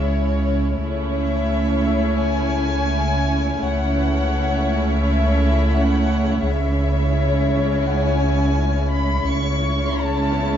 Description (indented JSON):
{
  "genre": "cinematic, suspense film score",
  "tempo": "85 BPM",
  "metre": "4/4",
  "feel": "straight",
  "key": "C# minor",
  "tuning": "A4 = 444 Hz",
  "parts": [
    { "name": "warm chamber violin section", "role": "melody", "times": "0.0-10.6 s", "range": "C#5 to C#6", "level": "-28 LUFS", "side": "left 1 dB", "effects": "none" },
    { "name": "rich studio violin section", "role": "second line", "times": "0.0-10.6 s", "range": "E4 to C#5", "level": "-26 LUFS", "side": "left 5 dB", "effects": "none" },
    { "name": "warm studio viola section", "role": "accompaniment", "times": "0.0-10.6 s", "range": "G#3 to C#4", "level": "-24 LUFS", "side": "right 3 dB", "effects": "none" },
    { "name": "dark studio double bass section", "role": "bass", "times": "0.0-10.6 s", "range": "C#2", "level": "-26 LUFS", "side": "right 2 dB", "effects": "none" },
    { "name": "warm studio cello section", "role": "bass", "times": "0.0-10.6 s", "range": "C#3", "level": "-26 LUFS", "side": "right 2 dB", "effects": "none" },
    { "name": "warm sub bass", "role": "drone", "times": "0.0-10.6 s", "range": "C#2", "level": "-23 LUFS", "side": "equal", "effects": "none" },
    { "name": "concert harp", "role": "texture", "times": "0.0-10.6 s", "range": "B3 to G#5", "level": "-36 LUFS", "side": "left 8 dB", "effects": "none" }
  ],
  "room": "moderate scoring stage reverb, RT60 1.8 s",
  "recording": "dark, warm production, nothing above 7.7 kHz",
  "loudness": "-17 LUFS",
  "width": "side -9 dB against mid",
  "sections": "0.0-10.6 A section",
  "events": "none",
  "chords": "0.0 C#m; 0.8 A/C#; 6.4 C#m"
}